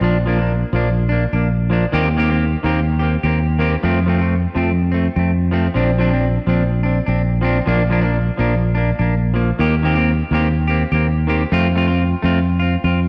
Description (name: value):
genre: highlife guitar band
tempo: 125 BPM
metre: 4/4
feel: straight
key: Bb major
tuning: A4 = 442 Hz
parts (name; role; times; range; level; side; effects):
- clean electric guitar; accompaniment; 0.0-13.0 s; Eb3 to G4; -22 LUFS; equal; none
- fingered electric bass; bass; 0.0-13.1 s; Bb1 to F2; -19 LUFS; equal; none
room: moderate echo chamber reverb, RT60 2.2 s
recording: none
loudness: -17 LUFS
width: mono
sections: 0.0-13.1 A section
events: none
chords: 0.0 Bb; 1.9 Eb6; 3.8 F; 5.8 Bbadd9; 7.7 Bb; 9.6 Eb6; 11.5 F